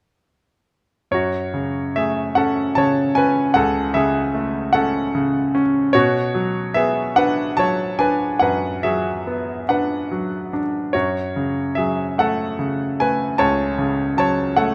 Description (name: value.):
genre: classical, lyrical solo piano.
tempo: 49 BPM (dotted quarters).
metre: 6/8.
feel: uneven beats, rubato.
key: F# minor.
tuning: A4 = 439 Hz.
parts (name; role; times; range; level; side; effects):
bright grand piano; solo; 1.1-14.7 s; C#2 to A5; -20 LUFS; equal; none.
room: light reverb.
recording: close, detailed microphones.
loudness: -20 LUFS.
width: mono.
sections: 1.1-14.7 A section.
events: none.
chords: 1.1 F#m; 5.9 Bmadd9; 10.9 F#m.